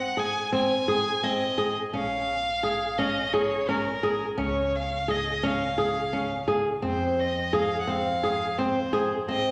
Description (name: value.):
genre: contemporary instrumental, chamber music in an uneven meter.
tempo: 171 BPM (eighths).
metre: 7/8.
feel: straight.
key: unclear.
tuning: A4 = 440 Hz.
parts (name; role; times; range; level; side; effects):
rich violin; melody; 0.0-9.5 s; Bb4 to Ab5; -31 LUFS; equal; none.
upright bass; bass; 0.0-9.5 s; Bb1 to Ab2; -41 LUFS; equal; none.
flamenco guitar; arpeggios; 0.2-9.5 s; C4 to Ab4; -28 LUFS; equal; none.
room: wet scoring stage reverb, RT60 1.7 s.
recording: none.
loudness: -26 LUFS.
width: mono.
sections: 0.0-9.5 A section.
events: none.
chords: 0.0 Ab; 1.9 Bbm7; 4.4 Db; 6.8 Fm.